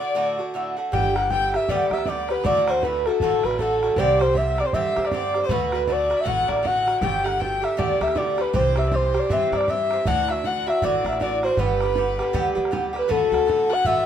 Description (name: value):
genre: celtic folk, Celtic hornpipe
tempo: 158 BPM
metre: 4/4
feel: swing 60% on 8ths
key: G major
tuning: A4 = 438 Hz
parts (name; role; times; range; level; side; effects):
- breathy flute-like synth lead; melody; 0.0-14.1 s; A4 to G5; -22 LUFS; left 1 dB; chorus
- rich fiddle; second line; 0.0-14.1 s; A4 to G5; -30 LUFS; left 6 dB; none
- Irish bouzouki; accompaniment; 0.0-14.1 s; G2 to G4; -26 LUFS; right 3 dB; none
- upright bass; bass; 0.9-14.1 s; G1 to G2; -29 LUFS; equal; none
- bodhran; percussion; 0.9-14.0 s; none; -31 LUFS; right 3 dB; none
room: light reverb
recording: minimal, uncompressed stereo recording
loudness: -19 LUFS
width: side -9 dB against mid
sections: 0.9-13.1 A section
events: none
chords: 0.0 D; 0.9 G; 2.5 D; 4.0 Csus2; 5.5 D6; 7.0 Gadd9; 8.5 C; 10.1 Dadd9; 11.6 G; 13.1 D6